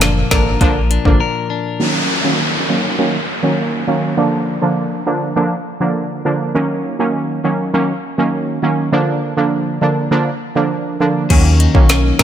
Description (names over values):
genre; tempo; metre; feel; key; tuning
dancehall; 101 BPM; 4/4; straight; Eb minor; A4 = 439 Hz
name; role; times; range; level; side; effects
synth brass stab; accompaniment; 0.0-12.2 s; D3 to D4; -16 LUFS; right 2 dB; chorus, low-pass filter
clean electric guitar; arpeggios; 0.0-2.4, 11.3-12.2 s; Bb2 to Bb4; -20 LUFS; left 7 dB; none
sub bass with octave; bass; 0.0-1.2, 11.3-12.2 s; Gb1 to Eb2; -15 LUFS; equal; none
afro-pop drum kit; drums; 0.0-1.2, 11.3-12.2 s; crash cymbal, hi-hat, kick drum, snare drum; -14 LUFS; equal; none
downlifter; sound effects; 1.8-6.5 s; none; -21 LUFS; equal; none
room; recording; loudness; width
light reverb, digital ambience; none; -14 LUFS; side -10 dB against mid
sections
0.0-1.8 A section; 1.8-11.3 B section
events
break 1.2-1.8; filter sweep on synth stab 1.8-11.3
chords
0.0 Bb; 1.8 Ebm7; 4.2 Bb; 6.5 Ebm7; 8.9 Bb; 11.3 Ebm7